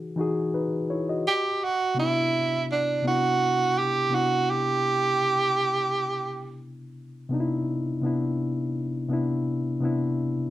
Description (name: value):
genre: R&B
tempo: 84 BPM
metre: 4/4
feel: swing 55% on 16ths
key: unclear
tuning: A4 = 440 Hz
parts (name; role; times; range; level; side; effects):
- mellow reed electric piano; accompaniment; 0.0-10.5 s; C3 to D#5; -27 LUFS; left 2 dB; none
- breathy tenor saxophone; melody; 1.3-6.6 s; D4 to G4; -23 LUFS; right 3 dB; slapback echo
room: moderate studio reverb, RT60 0.6 s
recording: none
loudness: -23 LUFS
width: side -14 dB against mid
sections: 0.0-10.5 A section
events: none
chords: 0.0 Emaj9; 1.2 Cmaj9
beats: 0.53 | 1.25 1.96 2.68 3.39 | 4.11 4.82 5.53 6.25 | 6.96 7.68 8.39 9.11 | 9.82